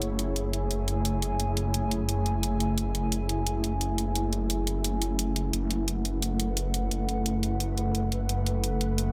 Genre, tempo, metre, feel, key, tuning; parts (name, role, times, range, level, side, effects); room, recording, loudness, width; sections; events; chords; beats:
dark technical drum and bass; 174 BPM; 4/4; straight; F# minor; A4 = 440 Hz
dark analog pad; sustained chords; 0.0-9.1 s; A3 to G#5; -36 LUFS; equal; chorus, phaser
phased detuned saw bass; bass; 0.0-9.1 s; F#1; -31 LUFS; equal; phaser, overdrive
electronic hi-hat; drums; 0.0-9.1 s; -34 LUFS; equal
ethereal airy pad; texture; 0.0-9.1 s; A3 to C#5; -36 LUFS; equal; ensemble chorus, built-in reverb
light reverb; -29 LUFS; mono
0.0-9.1 A section
0.0 F#madd9
| 0.02 0.36 0.71 1.05 | 1.40 1.74 2.09 2.43 | 2.78 3.12 3.46 3.81 | 4.16 4.50 4.84 5.19 | 5.53 5.88 6.22 6.57 | 6.91 7.26 7.60 7.95 | 8.29 8.64 8.98